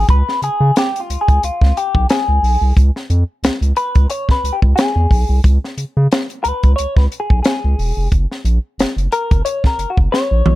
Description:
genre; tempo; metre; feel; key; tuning
funk; 90 BPM; 4/4; swing 56% on 16ths; Db mixolydian; A4 = 440 Hz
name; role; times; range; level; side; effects
clean electric guitar; accompaniment; 0.0-10.6 s; F4 to Db5; -19 LUFS; left 2 dB; wah, wide subtle chorus
round analog bass; bass; 0.0-10.6 s; Fb1 to Db3; -14 LUFS; equal; none
compact cocktail drum kit; drums; 0.1-10.6 s; hi-hat, kick drum, snare drum, toms; -16 LUFS; equal; none
room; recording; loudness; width
little or no reverb; none; -13 LUFS; side -16 dB against mid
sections
0.0-10.6 A section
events
clean electric guitar solo 0.0-10.6; drum fill 10.1-10.6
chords
0.1 Db7; 8.1 Gb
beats
| 0.09 0.76 1.43 2.10 | 2.77 3.44 4.11 4.77 | 5.44 6.11 6.78 7.45 | 8.12 8.79 9.46 10.13

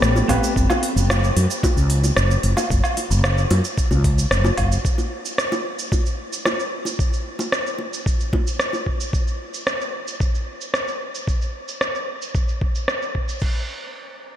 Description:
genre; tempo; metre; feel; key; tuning
sunset chillout; 112 BPM; 4/4; straight; unclear; A4 = 440 Hz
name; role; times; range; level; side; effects
clean electric guitar; accompaniment; 0.0-0.5 s; A3 to B4; -28 LUFS; equal; auto-pan, tape echo
mellow fretless electric bass; bass; 0.0-4.8 s; F#1 to F#2; -18 LUFS; equal; none
smooth R&B drum kit; drums; 0.0-13.4 s; hi-hat, rim click, shaker, woodblock; -24 LUFS; right 1 dB; low-pass filter on hats, low-pass filter on snare, low-pass filter on perc, low-pass filter on room
bongos; percussion; 0.2-8.8 s; none; -29 LUFS; equal; none
dusty soul sampler-style drum kit; drums; 0.3-13.5 s; crash cymbal, kick drum; -21 LUFS; equal; none
room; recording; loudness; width
light reverb; none; -19 LUFS; side -11 dB against mid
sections
0.0-13.4 A section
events
none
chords
0.0 Am9; 0.6 F#5; 4.8 N.C.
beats
0.02 | 0.56 1.09 1.63 2.17 | 2.70 3.24 3.77 4.31 | 4.84 5.38 5.92 6.45 | 6.99 7.52 8.06 8.60 | 9.13 9.67 10.20 10.74 | 11.27 11.81 12.35 12.88 | 13.42

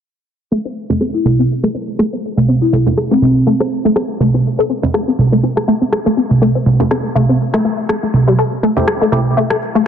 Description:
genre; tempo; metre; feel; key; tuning
minimal techno; 122 BPM; 4/4; swing 56% on 16ths; A minor; A4 = 440 Hz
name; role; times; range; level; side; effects
resonant blip pluck; riff; 0.5-9.8 s; G3 to A4; -16 LUFS; left 2 dB; ensemble chorus, cassette tape, tape echo
congas; percussion; 0.9-9.2 s; none; -15 LUFS; right 3 dB; digital delay
electronic rim click; drums; 1.0-9.6 s; none; -22 LUFS; left 1 dB; overdrive, low-pass filter on snare
folk marimba with medium mallets; melody; 1.1-3.3 s; C4 to E4; -18 LUFS; left 2 dB; digital delay
egg shaker; percussion; 8.4-9.8 s; none; -50 LUFS; left 2 dB; none
percussive organ stab; stabs; 8.8-9.2 s; A3 to G4; -20 LUFS; equal; wide subtle chorus, digital delay
room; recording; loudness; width
moderate plate reverb, RT60 1.9 s, small room ambience; dense, heavily limited modern master, low-pass filter; -12 LUFS; side -8 dB against mid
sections
0.5-9.9 A section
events
filter sweep on drum 0.5-9.9; filter sweep 0.5-9.9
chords
0.5 Am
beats
| 0.52 1.01 1.50 1.99 | 2.48 2.97 3.47 3.96 | 4.45 4.94 5.43 5.92 | 6.42 6.91 7.40 7.89 | 8.38 8.88 9.37

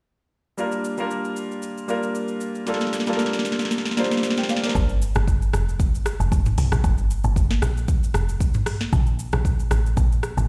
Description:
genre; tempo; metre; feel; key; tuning
amapiano; 115 BPM; 4/4; swing 55% on 16ths; unclear; A4 = 440 Hz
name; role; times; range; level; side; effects
clear grand piano; accompaniment; 0.6-4.9 s; G3 to G5; -27 LUFS; equal; none
afro-pop drum kit; drums; 0.6-10.5 s; hi-hat, kick drum, rim click, shaker, snare drum, toms; -25 LUFS; equal; vintage 12-bit sampler grit
woody log drum bass; bass; 4.8-10.5 s; F1 to C2; -24 LUFS; equal; none
room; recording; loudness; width
little or no reverb; played on a big sound system in a bare room, stone room reverb; -23 LUFS; mono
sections
0.6-4.8 A section; 4.8-10.5 B section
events
drum fill 2.7-4.8; drop 4.8-10.5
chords
0.6 Gm7; 8.9 Bbmaj7(no3)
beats
| 0.58 1.10 1.62 2.14 | 2.67 3.19 3.71 4.23 | 4.75 5.28 5.80 6.32 | 6.84 7.36 7.88 8.40 | 8.93 9.45 9.97

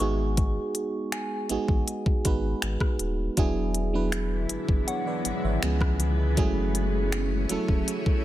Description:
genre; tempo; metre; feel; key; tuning
contemporary R&B; 80 BPM; 4/4; straight; unclear; A4 = 440 Hz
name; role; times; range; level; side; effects
FM electric piano; accompaniment; 0.0-8.2 s; E#3 to G#5; -29 LUFS; right 3 dB; chorus
warm sub bass; bass; 0.0-7.8 s; D#1 to C#2; -28 LUFS; equal; none
soft synth bell; texture; 0.0-6.0 s; F#5 to C#6; -37 LUFS; left 2 dB; chorus, digital delay
trap drum kit; drums; 0.4-8.2 s; finger snaps, hi-hat, kick drum, rim click; -26 LUFS; equal; overdrive, soft clipping on snare
granular cloud pad; sustained chords; 4.1-8.2 s; D3 to E4; -33 LUFS; left 2 dB; built-in reverb
room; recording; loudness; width
little or no reverb; dense, heavily limited modern master; -24 LUFS; side -14 dB against mid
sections
0.0-8.2 A section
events
none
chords
0.0 G#m7; 3.4 E7; 5.6 C#7; 6.4 F#m7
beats
| 0.37 1.12 1.87 2.62 | 3.37 4.12 4.87 5.62 | 6.37 7.12 7.87

